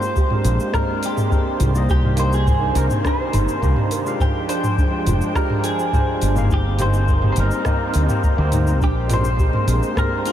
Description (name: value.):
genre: sunset chillout.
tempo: 104 BPM.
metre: 4/4.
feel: straight.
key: F dorian.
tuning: A4 = 439 Hz.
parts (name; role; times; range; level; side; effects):
clean electric guitar; melody; 0.0-10.3 s; G4 to C5; -25 LUFS; equal; analog chorus, diffuse ambient delay.
overdriven tine electric piano; accompaniment; 0.0-10.3 s; Ab3 to F5; -26 LUFS; right 1 dB; auto-pan, tape echo.
muted chamber string section; sustained chords; 0.0-10.3 s; C3 to G5; -28 LUFS; equal; none.
soft round pluck; arpeggios; 0.0-10.3 s; D4 to Bb5; -30 LUFS; right 1 dB; ensemble chorus, tape echo.
smooth R&B drum kit; drums; 0.0-10.3 s; cabasa, hi-hat, rim click, toms; -25 LUFS; equal; overdrive.
electronic kick drum; drums; 0.2-10.1 s; none; -20 LUFS; equal; overdrive.
mellow fretless electric bass; bass; 0.4-9.8 s; F1 to D2; -19 LUFS; equal; none.
room: moderate huge ambient reverb, RT60 8.3 s.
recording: dreamy mix soaked in reverb.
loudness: -16 LUFS.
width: side -11 dB against mid.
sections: 0.0-10.3 A section.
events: none.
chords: 0.0 Bb13; 1.9 Cm9; 4.2 Fm69; 6.5 Eb6/G; 8.8 Bb13.